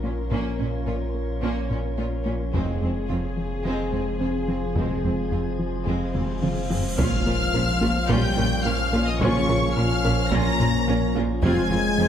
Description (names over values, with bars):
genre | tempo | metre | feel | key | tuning
cinematic, hybrid orchestral and electronic film score | 108 BPM | 4/4 | straight | Bb minor | A4 = 441 Hz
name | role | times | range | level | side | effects
dark symphonic violin section | melody | 0.0-12.1 s | Ab4 to Bb6 | -31 LUFS | left 3 dB | none
clear symphonic violin section | second line | 0.0-12.1 s | Ab3 to Bb5 | -33 LUFS | left 3 dB | none
rich symphonic viola section | accompaniment | 0.0-12.1 s | Ab3 to F4 | -32 LUFS | right 1 dB | none
mellow French horn section | sustained chords | 0.0-12.1 s | Db3 to Ab4 | -30 LUFS | left 3 dB | none
metallic inharmonic drone | sustained chords | 0.0-12.1 s | F3 to Db5 | -32 LUFS | left 1 dB | chorus, built-in reverb, phaser
thumb-piano-like synth pluck | arpeggios | 0.0-12.1 s | F3 to Bb4 | -33 LUFS | right 4 dB | chorus, ping-pong delay
plucky analog bass | riff | 0.0-12.1 s | F2 to Bb3 | -29 LUFS | left 2 dB | none
rich symphonic cello section | bass | 0.0-12.1 s | F2 to Bb2 | -33 LUFS | right 2 dB | none
warm sub bass | bass | 0.0-12.1 s | F1 to Bb1 | -30 LUFS | equal | none
impact and cymbal swell | sound effects | 0.0-0.3, 6.4-9.2 s | none | -33 LUFS | equal | none
rich symphonic double bass section | bass | 0.3-12.1 s | F1 to Bb1 | -31 LUFS | right 4 dB | none
taiko ensemble | drums | 2.5-11.9 s | none | -30 LUFS | equal | none
clear trombone section | sustained chords | 7.0-12.1 s | F3 to Db4 | -33 LUFS | right 3 dB | none
room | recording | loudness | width
wet scoring stage reverb, RT60 2.0 s | none | -21 LUFS | side -9 dB against mid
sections
0.0-7.0 A section; 7.0-12.1 B section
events
impact 0.0-0.3, 7.0-9.2; drum fill 6.2-7.0; cymbal swell 6.4-7.0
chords
0.0 Bbm; 2.5 Fm; 7.0 Bbm; 11.4 Fm